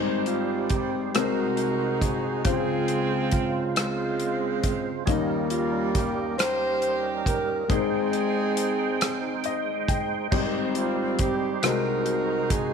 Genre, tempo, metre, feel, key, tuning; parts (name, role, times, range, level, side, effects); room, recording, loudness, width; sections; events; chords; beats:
slow gospel; 46 BPM (dotted quarters); 6/8; straight; Ab major; A4 = 440 Hz
dark saxophone section; melody; 0.0-12.7 s; G3 to C5; -27 LUFS; right 1 dB
warm upright piano; accompaniment; 0.0-12.7 s; Ab1 to Ab5; -29 LUFS; left 10 dB
percussive tonewheel organ; sustained chords; 0.0-12.7 s; C3 to G5; -31 LUFS; right 11 dB; slow rotary speaker, overdrive, chorus vibrato
natural country drum kit; drums; 0.3-12.7 s; crash cymbal, hi-hat, kick drum, rim click; -28 LUFS; right 1 dB
moderate echo chamber reverb, RT60 2.1 s; 1960s-style stereo with parts hard left and right; -23 LUFS; side -6 dB against mid
0.0-10.3 A section; 10.3-12.7 A section
upright piano fill 9.0-10.3
0.0 Abmaj7; 1.1 Ab7/C; 2.5 Dbmaj7; 5.1 Eb7; 7.7 Abmaj7; 11.6 Ab7/C
1.14 | 2.45 3.76 | 5.07 6.38 | 7.69 9.00 | 10.31 11.62